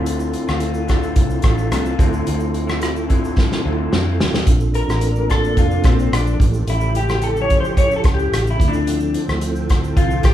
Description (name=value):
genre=indie pop, bedroom pop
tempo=109 BPM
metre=4/4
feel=straight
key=D minor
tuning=A4 = 442 Hz
part: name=electric guitar through a small old amp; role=accompaniment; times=0.0-10.3 s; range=D3 to C#5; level=-22 LUFS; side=left 4 dB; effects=vibrato effect
part: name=mellow tonewheel organ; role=accompaniment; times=0.0-10.3 s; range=C4 to A4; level=-26 LUFS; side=right 4 dB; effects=chorus vibrato, fast rotary speaker
part: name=vintage muted fingered electric bass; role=bass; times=0.0-10.3 s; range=F1 to F2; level=-21 LUFS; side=equal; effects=none
part: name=loose indie drum kit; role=drums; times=0.1-10.3 s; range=hi-hat, kick drum, rim click, shaker, snare drum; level=-18 LUFS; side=equal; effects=none
part: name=soft string machine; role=sustained chords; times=4.9-10.3 s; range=C#3 to G4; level=-27 LUFS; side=equal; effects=ensemble chorus
room=moderate large studio reverb, RT60 0.9 s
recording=band playing live in one room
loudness=-15 LUFS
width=side -12 dB against mid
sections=0.0-4.5 A section; 4.5-10.3 B section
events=drum fill 3.4-4.5; clean electric guitar solo 4.5-10.3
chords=0.0 Dm7; 2.0 Dm9; 4.5 Bbmaj7; 6.4 A7; 8.6 Dm7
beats=| 0.07 0.62 1.17 1.72 | 2.27 2.82 3.37 3.92 | 4.47 5.02 5.57 6.12 | 6.67 7.22 7.78 8.32 | 8.88 9.43 9.98